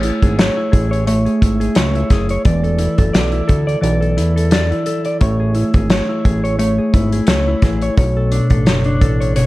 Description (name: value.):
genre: indie pop, bedroom pop.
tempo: 87 BPM.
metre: 4/4.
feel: swing 55% on 16ths.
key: A major.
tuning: A4 = 440 Hz.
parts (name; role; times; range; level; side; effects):
mellow electric guitar; accompaniment; 0.0-9.5 s; B2 to D5; -17 LUFS; equal; lush chorus, vibrato effect.
fat analog bass; bass; 0.0-9.5 s; E1 to E2; -18 LUFS; equal; none.
loose indie drum kit; drums; 0.0-9.5 s; hi-hat, kick drum, snare drum; -16 LUFS; equal; none.
room: small room ambience.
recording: cassette tape.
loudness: -13 LUFS.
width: side -18 dB against mid.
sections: 0.0-9.5 A section.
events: none.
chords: 0.0 Amaj7; 2.5 E7sus4; 5.2 Amaj7; 8.0 Bm9.